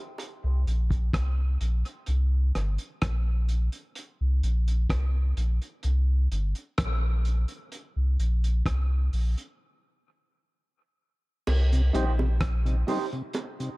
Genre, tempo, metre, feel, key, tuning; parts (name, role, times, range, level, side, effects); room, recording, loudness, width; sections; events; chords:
dub reggae; 64 BPM; 4/4; straight; C minor; A4 = 440 Hz
cloth-damped thuddy drum kit; drums; 0.2-13.8 s; crash cymbal, hi-hat, kick drum, rim click; -33 LUFS; equal
bongos; percussion; 0.2-0.4, 11.5-13.6 s; -36 LUFS; right 3 dB; high-pass filter on perc, dub echo
warm sub bass; bass; 0.4-12.8 s; G1 to C2; -24 LUFS; equal
mellow tonewheel organ; accompaniment; 11.7-13.7 s; C3 to Eb4; -34 LUFS; left 2 dB; overdrive, chorus vibrato, slow rotary speaker, dub echo
electric guitar through a small old amp; accompaniment; 11.9-13.2 s; Eb4 to C5; -35 LUFS; right 3 dB; lush chorus, high-pass filter, low-pass filter, dub echo
small room ambience; dark, warm production; -24 LUFS; side -22 dB against mid
0.0-11.5 A section; 11.5-13.8 B section
part muted 0.2-11.5; break 9.6-11.5
0.2 C5; 7.7 Bbsus2; 11.5 Cm